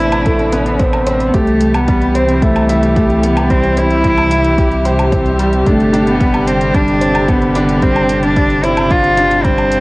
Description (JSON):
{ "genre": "piano and strings electronica", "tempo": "111 BPM", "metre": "4/4", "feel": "straight", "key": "unclear", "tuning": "A4 = 440 Hz", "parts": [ { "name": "warm cello", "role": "melody", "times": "0.0-9.8 s", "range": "A3 to F4", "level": "-14 LUFS", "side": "equal", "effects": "none" }, { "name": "rich string quartet", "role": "sustained chords", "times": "0.0-9.8 s", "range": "C3 to B4", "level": "-19 LUFS", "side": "equal", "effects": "sidechain pumping, cassette tape" }, { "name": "bright concert grand piano", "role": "riff", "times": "0.0-9.8 s", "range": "G3 to C5", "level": "-17 LUFS", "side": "equal", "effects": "cassette tape" }, { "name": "round analog bass", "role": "bass", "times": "0.0-9.8 s", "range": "G1 to C2", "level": "-19 LUFS", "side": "equal", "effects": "sidechain pumping" }, { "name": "electronic hi-hat and woodblock", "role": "drums", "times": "0.1-9.8 s", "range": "none", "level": "-25 LUFS", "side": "equal", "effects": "overdrive" }, { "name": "electronic kick drum", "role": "drums", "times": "0.3-9.6 s", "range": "none", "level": "-16 LUFS", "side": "equal", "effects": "overdrive" } ], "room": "light reverb, small room ambience", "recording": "home recording on cassette", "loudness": "-10 LUFS", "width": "side -23 dB against mid", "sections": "0.0-9.8 A section", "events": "none", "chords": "0.0 Amadd9; 1.3 C; 5.7 Gsus4" }